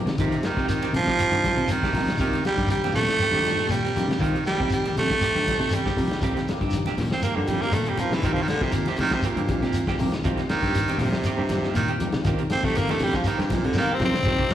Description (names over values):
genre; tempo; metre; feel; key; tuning
afrobeat; 119 BPM; 4/4; swing 53% on 16ths; C dorian; A4 = 440 Hz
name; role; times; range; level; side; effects
overdriven tine electric piano; accompaniment; 0.0-14.5 s; Bb2 to Bb4; -33 LUFS; left 3 dB; phaser, slapback echo
clean electric guitar; arpeggios; 0.0-14.5 s; C3 to G3; -34 LUFS; left 8 dB; wide subtle chorus
fingered electric bass; bass; 0.1-14.5 s; G2 to Eb3; -28 LUFS; equal; none
vintage drum kit; drums; 0.1-14.5 s; crash cymbal, hi-hat, kick drum, ride cymbal, snare drum; -30 LUFS; left 1 dB; none
breathy baritone saxophone; melody; 0.2-13.9 s; G2 to C4; -25 LUFS; right 2 dB; slapback echo
clean electric guitar; stabs; 0.2-14.4 s; Eb3 to G4; -33 LUFS; right 9 dB; tremolo, slapback echo
congas; percussion; 0.2-14.4 s; none; -31 LUFS; left 1 dB; none
shekere; percussion; 0.2-14.5 s; none; -29 LUFS; left 1 dB; none
growling tenor saxophone; melody; 13.8-14.5 s; Bb3 to C4; -24 LUFS; left 3 dB; none
room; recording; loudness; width
little or no reverb; live gig heard through the venue's PA, recital hall reverb; -21 LUFS; side -11 dB against mid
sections
0.0-14.3 A section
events
baritone saxophone solo 0.0-14.3; drum fill 13.8-14.3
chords
0.0 Cm7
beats
| 0.20 0.70 1.20 1.70 | 2.21 2.71 3.21 3.71 | 4.22 4.72 5.22 5.73 | 6.23 6.73 7.23 7.74 | 8.24 8.74 9.24 9.75 | 10.25 10.75 11.25 11.76 | 12.26 12.76 13.26 13.76 | 14.27